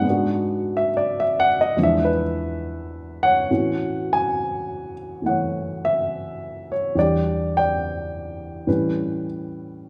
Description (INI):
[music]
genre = jazz ballad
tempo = 70 BPM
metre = 4/4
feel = swing 68% on 8ths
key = A major from 3.5 s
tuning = A4 = 440 Hz
[part]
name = dark baby grand piano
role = solo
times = 0.0-9.9 s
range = E2 to G#5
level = -23 LUFS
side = equal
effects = none
[sound]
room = wet recital hall reverb, RT60 1.6 s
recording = recorded in a church or concert hall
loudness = -22 LUFS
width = mono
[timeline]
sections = 0.0-3.5 A section; 3.5-9.9 B section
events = none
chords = 0.0 G#m7b5; 1.8 E7b9; 3.5 A69; 7.0 Em7; 8.7 A7